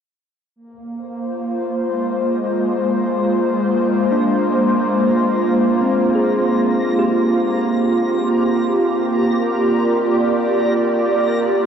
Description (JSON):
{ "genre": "ambient", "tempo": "71 BPM", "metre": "4/4", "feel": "straight", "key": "unclear", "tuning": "A4 = 440 Hz", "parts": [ { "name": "backwards swelling texture", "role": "texture", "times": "2.4-11.7 s", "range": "Bb5 to Bb6", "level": "-35 LUFS", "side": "left 2 dB", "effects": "built-in reverb" }, { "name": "airy breathy pad", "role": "sustained chords", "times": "0.6-11.7 s", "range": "Ab3 to D5", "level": "-16 LUFS", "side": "equal", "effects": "chorus" }, { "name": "tine electric piano", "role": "arpeggios", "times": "4.1-11.7 s", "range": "C4 to Ab4", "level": "-25 LUFS", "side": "left 1 dB", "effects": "medium tremolo, tape echo" } ], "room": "wet studio reverb, RT60 0.6 s", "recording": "home recording on cassette", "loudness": "-15 LUFS", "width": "side -8 dB against mid", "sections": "0.6-11.7 A section", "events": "fade-in on tine electric piano 0.6-11.7; fade-in on synth texture 0.6-11.7", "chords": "0.6 Bb5" }